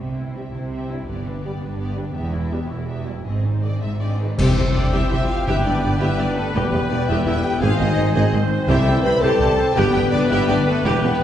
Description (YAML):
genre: cinematic, heroic adventure film score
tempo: 111 BPM (dotted quarters)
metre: 6/8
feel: straight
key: C major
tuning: A4 = 440 Hz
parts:
  - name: warm symphonic violin section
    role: melody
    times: 0.0-11.2 s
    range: A4 to B5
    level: -32 LUFS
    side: left 3 dB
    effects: none
  - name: warm symphonic violin section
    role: second line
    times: 0.0-11.2 s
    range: E4 to B5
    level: -34 LUFS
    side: left 2 dB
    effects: none
  - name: clear symphonic viola section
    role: accompaniment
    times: 0.0-11.2 s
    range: B3 to C5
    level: -28 LUFS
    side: equal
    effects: none
  - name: rich symphonic cello section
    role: bass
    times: 0.0-11.1 s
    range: E2 to C3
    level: -26 LUFS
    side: right 1 dB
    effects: none
  - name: warm symphonic double bass section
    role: bass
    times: 0.0-11.2 s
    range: E1 to C2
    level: -25 LUFS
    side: right 1 dB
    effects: none
  - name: timpani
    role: percussion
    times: 0.0-1.6, 4.4-6.0, 8.7-10.3 s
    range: G2 to C3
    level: -27 LUFS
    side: left 1 dB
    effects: none
  - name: mellow French horn section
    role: sustained chords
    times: 0.4-11.2 s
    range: A3 to B4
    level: -24 LUFS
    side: left 2 dB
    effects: none
  - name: warm trombone section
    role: sustained chords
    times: 0.4-11.2 s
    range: G2 to C4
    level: -28 LUFS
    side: left 1 dB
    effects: none
  - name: cymbal swell, clash cymbals and concert bass drum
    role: percussion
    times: 2.2-5.1 s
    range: none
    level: -24 LUFS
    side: equal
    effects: none
  - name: bright oboe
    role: second line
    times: 4.4-11.2 s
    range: B4 to E5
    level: -32 LUFS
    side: right 1 dB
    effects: none
  - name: mellow silver concert flute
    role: second line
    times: 4.4-11.2 s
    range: G5 to Ab5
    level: -29 LUFS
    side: left 1 dB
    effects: none
  - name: dark tuba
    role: bass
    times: 4.4-11.1 s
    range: E1 to C2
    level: -25 LUFS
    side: right 1 dB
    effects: none
  - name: warm clarinet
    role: second line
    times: 4.9-11.2 s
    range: G4 to D5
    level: -30 LUFS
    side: equal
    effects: none
room: wet concert hall reverb, RT60 1.9 s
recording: heard from further back in the room, nothing above 10.7 kHz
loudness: -17 LUFS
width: side -10 dB against mid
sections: 0.0-4.4 A section; 4.4-11.2 B section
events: band accent 4.4-4.8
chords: 0.0 C; 1.1 G; 2.2 Em; 3.3 Ab; 4.4 C; 5.5 G; 6.6 Em; 7.6 Ab; 8.7 C; 9.8 G